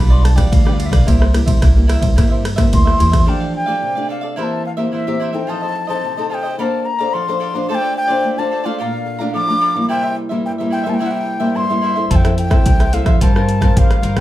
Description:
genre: samba and choro.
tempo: 109 BPM.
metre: 4/4.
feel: straight.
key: F major.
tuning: A4 = 440 Hz.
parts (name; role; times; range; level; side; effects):
wooden flute; melody; 0.0-14.2 s; E5 to D6; -20 LUFS; left 1 dB; none.
cavaquinho; accompaniment; 0.0-14.2 s; D4 to Bb5; -26 LUFS; right 2 dB; none.
nylon-string guitar; accompaniment; 0.0-14.2 s; G2 to C5; -21 LUFS; left 1 dB; none.
upright bass; bass; 0.0-3.3, 12.1-14.2 s; B1 to G2; -15 LUFS; equal; none.
punchy analog drum machine; drums; 0.3-3.3, 12.1-14.2 s; hi-hat, kick drum, ride cymbal, rim click; -14 LUFS; equal; none.
room: wet studio reverb, RT60 0.6 s.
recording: heard from further back in the room.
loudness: -13 LUFS.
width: side -14 dB against mid.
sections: 0.0-3.3 A section; 3.3-14.2 B section.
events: flute solo 0.0-3.3.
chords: 0.0 G7/B; 1.1 C7; 3.3 F69; 4.4 C7/E; 5.5 F7; 6.6 Bbmaj9; 7.7 Dm7/A; 8.8 Bbmaj7; 9.9 C7; 12.1 Fmaj7; 13.2 C7sus4/G.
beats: 0.52 | 1.07 1.62 2.17 2.73 | 3.28 3.83 4.38 4.94 | 5.49 6.04 6.59 7.14 | 7.70 8.25 8.80 9.35 | 9.90 10.45 11.01 11.56 | 12.11 12.66 13.21 13.76.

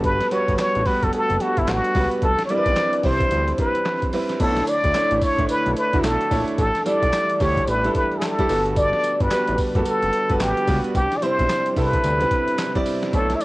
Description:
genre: R&B, new jack swing.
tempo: 110 BPM.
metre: 4/4.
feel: swing 62% on 16ths.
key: unclear.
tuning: A4 = 440 Hz.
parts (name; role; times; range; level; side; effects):
clear concert grand piano; accompaniment; 0.0-13.4 s; G3 to D5; -24 LUFS; right 2 dB; cassette tape.
warm analog pad; sustained chords; 0.0-13.4 s; C3 to F#4; -33 LUFS; left 1 dB; none.
fat analog bass; bass; 0.0-13.3 s; F#1 to D2; -25 LUFS; equal; none.
boom bap sampler-style drum kit; drums; 0.0-13.4 s; crash cymbal, handclaps, hi-hat, kick drum, snare drum, tambourine; -26 LUFS; equal; cassette tape.
trumpet with plunger mute; melody; 0.1-13.4 s; E4 to E5; -21 LUFS; equal; cassette tape.
room: light reverb.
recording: home recording on cassette.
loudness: -18 LUFS.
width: side -20 dB against mid.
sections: 0.0-4.4 A section; 4.4-13.4 B section.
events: none.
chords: 0.0 Gmaj9; 2.2 Cmaj7; 4.4 Bm11; 6.6 A7sus4; 8.5 Gmaj9; 10.9 Cmaj7.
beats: | 0.04 0.58 1.13 1.68 | 2.22 2.77 3.31 3.86 | 4.40 4.95 5.49 6.04 | 6.58 7.13 7.68 8.22 | 8.77 9.31 9.86 10.40 | 10.95 11.49 12.04 12.59 | 13.13.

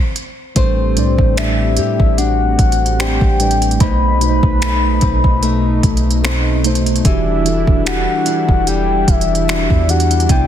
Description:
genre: contemporary R&B.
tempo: 74 BPM.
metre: 4/4.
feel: swing 54% on 16ths.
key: E minor.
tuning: A4 = 440 Hz.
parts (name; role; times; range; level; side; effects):
soft octave-layered synth lead; melody; 0.0-10.5 s; C5 to B5; -20 LUFS; left 3 dB; chorus.
smooth R&B drum kit; drums; 0.2-10.5 s; finger snaps, hi-hat, kick drum; -17 LUFS; equal; soft clipping on snare.
mellow tine electric piano; accompaniment; 0.6-10.5 s; A2 to D5; -20 LUFS; right 2 dB; medium stereo tremolo.
warm analog pad; sustained chords; 0.6-10.5 s; B2 to G4; -23 LUFS; right 2 dB; wide subtle chorus, sidechain pumping.
nylon-string guitar; arpeggios; 0.6-10.5 s; B2 to C5; -23 LUFS; left 9 dB; digital delay.
soft 808-style bass; bass; 0.6-10.5 s; E1 to A2; -17 LUFS; equal; none.
swell; sound effects; 10.4-10.5 s; none; -38 LUFS; right 1 dB; none.
room: little or no reverb.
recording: dense, heavily limited modern master.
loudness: -12 LUFS.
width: side -10 dB against mid.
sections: 0.0-10.5 A section.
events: none.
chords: 0.0 N.C.; 0.6 Am11; 3.8 B7b9; 7.0 Em9.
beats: | 0.56 1.37 2.19 3.00 | 3.81 4.62 5.43 6.24 | 7.05 7.86 8.67 9.48 | 10.29.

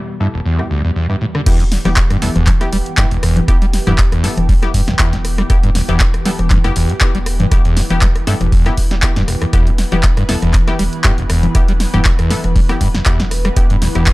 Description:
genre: acid house.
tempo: 119 BPM.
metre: 4/4.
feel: swing 54% on 16ths.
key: E minor.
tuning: A4 = 436 Hz.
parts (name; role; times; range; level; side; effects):
lush unison pad; sustained chords; 0.0-14.1 s; E2 to B4; -26 LUFS; equal; chorus, phaser, sidechain pumping.
overdriven acid bass; riff; 0.2-14.1 s; E1 to G3; -18 LUFS; equal; distortion, wide subtle chorus, sidechain pumping.
filtered dub chord stab; stabs; 0.2-14.0 s; B3 to A4; -25 LUFS; left 2 dB; chorus, tape echo.
punchy analog drum machine; drums; 0.6-14.1 s; congas, crash cymbal, handclaps, hi-hat, rim click, snare drum; -19 LUFS; left 1 dB; overdrive, studio ambience.
saturated sub bass; bass; 1.5-14.1 s; D1 to E1; -19 LUFS; equal; transformer saturation, sidechain pumping.
electronic kick drum; drums; 1.5-14.1 s; none; -14 LUFS; equal; overdrive, studio ambience.
room: little or no reverb.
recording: dry, gritty hardware recording, transformer saturation.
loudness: -12 LUFS.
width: side -20 dB against mid.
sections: 0.0-1.5 A section; 1.5-14.1 B section.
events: drop 1.5-14.1.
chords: 0.0 Em.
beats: 0.46 0.96 | 1.47 1.97 2.47 2.98 | 3.48 3.99 4.49 4.99 | 5.50 6.00 6.51 7.01 | 7.51 8.02 8.52 9.03 | 9.53 10.04 10.54 11.04 | 11.55 12.05 12.56 13.06 | 13.57 14.07.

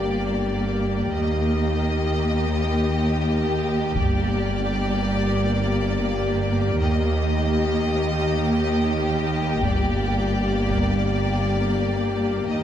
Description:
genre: cinematic, epic orchestral film score.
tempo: free time.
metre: none.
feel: none.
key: G minor.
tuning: A4 = 439 Hz.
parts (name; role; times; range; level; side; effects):
rich studio violin section; melody; 0.0-12.6 s; D5 to Eb5; -30 LUFS; left 3 dB; none.
warm symphonic violin section; second line; 0.0-12.6 s; G4; -30 LUFS; left 1 dB; none.
rich symphonic viola section; accompaniment; 0.0-12.6 s; Bb3; -29 LUFS; right 1 dB; none.
mellow French horn section; sustained chords; 0.0-12.6 s; Bb3 to G4; -28 LUFS; left 4 dB; none.
rich symphonic cello section; bass; 0.0-12.6 s; Eb2 to G2; -27 LUFS; right 2 dB; none.
rich symphonic double bass section; bass; 0.0-12.6 s; G1 to Eb2; -26 LUFS; right 1 dB; none.
taiko ensemble; drums; 4.0-5.3, 9.6-11.0 s; none; -27 LUFS; left 2 dB; none.
room: moderate concert hall reverb, RT60 2.0 s.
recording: none.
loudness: -20 LUFS.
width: side -10 dB against mid.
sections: 0.0-12.6 A section.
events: build-up 0.0-12.6.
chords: 0.0 Gm; 1.1 Eb; 4.0 Gm; 6.8 Eb; 9.6 Gm.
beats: free time.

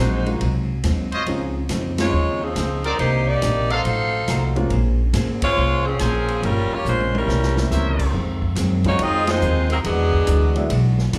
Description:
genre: jazz, big band swing.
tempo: 140 BPM.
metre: 4/4.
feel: swing 66% on 8ths.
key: unclear.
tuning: A4 = 440 Hz.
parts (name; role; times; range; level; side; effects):
bright saxophone section; melody; 0.0-10.7 s; F3 to F5; -24 LUFS; equal; slapback echo.
hollow-body jazz guitar; accompaniment; 0.0-11.2 s; F2 to C5; -31 LUFS; equal; none.
upright bass; bass; 0.0-11.2 s; G1 to Gb2; -23 LUFS; equal; none.
warm baby grand piano; accompaniment; 0.3-4.7, 7.6-10.7 s; F3 to F4; -29 LUFS; equal; none.
swinging big-band drum kit; drums; 0.3-11.2 s; crash cymbal, hi-hat, kick drum, ride cymbal, snare drum, toms; -32 LUFS; equal; none.
clear trumpet section; stabs; 1.1-8.1 s; Eb4 to Ab5; -29 LUFS; equal; slapback echo.
clear trombone section; second line; 7.2-10.7 s; B2 to Eb4; -31 LUFS; equal; slapback echo.
room: light reverb, studio reverb.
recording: live gig heard through the venue's PA, club reverb.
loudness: -20 LUFS.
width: mono.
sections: 0.0-8.1 A section; 8.1-11.2 B section.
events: band accent 1.9, 5.4, 9.2; drum fill 6.9-7.7.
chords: 0.0 Ab7; 1.3 Dbmaj9; 3.0 Cm9; 3.9 F7b9; 4.7 Bbm9; 6.4 Gm7b5; 7.3 C7b9; 8.1 Fm7; 9.9 E9.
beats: 0.42 0.85 | 1.28 1.71 2.13 2.56 | 2.99 3.42 3.85 4.28 | 4.71 5.14 5.57 6.00 | 6.43 6.86 7.28 7.71 | 8.14 8.57 9.00 9.43 | 9.85 10.28 10.71 11.13.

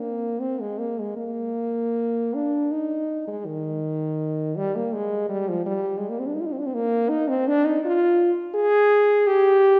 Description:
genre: classical, free, expressive piece for unaccompanied French horn.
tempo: 81 BPM.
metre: 3/4.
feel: uneven beats, rubato.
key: Eb major.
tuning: A4 = 439 Hz.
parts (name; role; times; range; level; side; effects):
mellow French horn; solo; 0.0-9.8 s; Eb3 to Ab4; -23 LUFS; equal; none.
room: wet scoring stage reverb, RT60 1.6 s.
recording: heard from further back in the room, nothing above 7.7 kHz.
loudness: -23 LUFS.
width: mono.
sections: 0.0-9.8 A section.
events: none.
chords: none.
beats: 0.39 | 1.18 1.96 2.73 | 3.47 4.21 4.95 | 5.67 6.40 7.12 | 7.85 8.58 9.29.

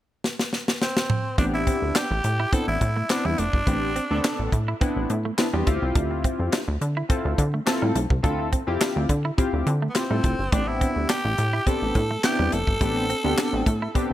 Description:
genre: early-eighties boogie funk.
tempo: 105 BPM.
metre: 4/4.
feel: straight.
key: A minor.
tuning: A4 = 440 Hz.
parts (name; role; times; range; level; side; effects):
tight funk drum kit; drums; 0.2-14.1 s; handclaps, hi-hat, kick drum, snare drum, toms; -24 LUFS; equal; none.
raspy tenor saxophone; melody; 0.8-4.5, 9.9-14.1 s; B3 to A4; -27 LUFS; equal; none.
chorused polysynth; accompaniment; 1.4-14.1 s; B3 to A4; -27 LUFS; left 1 dB; none.
semi-hollow electric guitar; riff; 1.4-14.0 s; G3 to E4; -33 LUFS; right 4 dB; wide subtle chorus.
plucky analog bass; bass; 1.4-14.1 s; F1 to D3; -25 LUFS; equal; none.
room: light reverb, studio reverb.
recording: none.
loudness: -21 LUFS.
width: side -13 dB against mid.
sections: 0.0-1.4 A section; 1.4-14.1 B section.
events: drum fill 0.2-1.4.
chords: 0.0 N.C.; 1.4 Am11.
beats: 0.24 0.81 | 1.38 1.95 2.52 3.10 | 3.67 4.24 4.81 5.38 | 5.95 6.53 7.10 7.67 | 8.24 8.81 9.38 9.95 | 10.53 11.10 11.67 12.24 | 12.81 13.38 13.95.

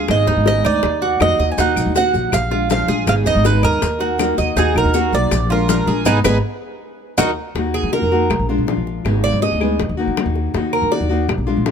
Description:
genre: latin, Cuban son and guajira.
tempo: 161 BPM.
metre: 4/4.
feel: straight.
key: Eb harmonic minor.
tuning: A4 = 440 Hz.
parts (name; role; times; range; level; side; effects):
Cuban tres; melody; 0.0-7.3 s; Eb4 to Ab5; -20 LUFS; right 3 dB; none.
nylon-string guitar; accompaniment; 0.0-11.7 s; Eb3 to Ab4; -22 LUFS; left 3 dB; none.
Cuban tres; arpeggios; 0.0-11.4 s; Cb4 to Eb5; -22 LUFS; right 5 dB; none.
upright bass; bass; 0.0-11.7 s; Ab1 to Eb3; -20 LUFS; equal; none.
bongos; percussion; 0.1-11.7 s; none; -25 LUFS; left 7 dB; none.
claves; percussion; 0.1-11.5 s; none; -28 LUFS; left 5 dB; none.
maracas; percussion; 1.6-7.3 s; none; -28 LUFS; left 4 dB; none.
room: light reverb.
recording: none.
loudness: -15 LUFS.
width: side -7 dB against mid.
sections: 0.0-7.6 A section; 7.6-11.7 B section.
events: drum fill 6.1-7.6; band accent 6.1-7.6; Cuban tres solo 7.6-11.7.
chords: 0.1 Abm; 0.8 Ebm; 2.3 Bb7; 3.1 Abm; 3.8 Ebm; 5.3 Bb7; 6.1 Abm; 6.8 Ebm; 8.3 Bb7; 9.1 Abm; 9.8 Ebm.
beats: | 0.09 0.46 0.83 1.21 | 1.58 1.96 2.33 2.70 | 3.08 3.45 3.82 4.20 | 4.57 4.95 5.32 5.69 | 6.07 6.44 6.81 7.18 | 7.56 7.93 8.30 8.68 | 9.05 9.42 9.80 10.17 | 10.54 10.92 11.29 11.66.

